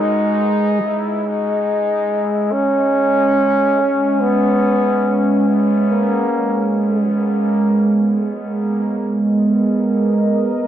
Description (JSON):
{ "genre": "ambient", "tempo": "free time", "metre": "none", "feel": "none", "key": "C# dorian", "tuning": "A4 = 440 Hz", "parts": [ { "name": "clear trombone", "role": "melody", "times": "0.0-7.1 s", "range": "G#3 to D#4", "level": "-18 LUFS", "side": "left 1 dB", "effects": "vintage 12-bit sampler grit, dub echo" }, { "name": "warm analog pad", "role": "sustained chords", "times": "0.0-10.7 s", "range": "G#3 to E5", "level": "-17 LUFS", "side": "right 2 dB", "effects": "chorus" } ], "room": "wet spring reverb, RT60 1.6 s, small room ambience", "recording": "echo-heavy mix", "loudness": "-14 LUFS", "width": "side -10 dB against mid", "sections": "0.8-10.7 A section", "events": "filter sweep on analog synth pad 0.8-10.7", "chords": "0.0 G#sus2; 0.8 C#m7; 7.6 G#madd9", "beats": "free time" }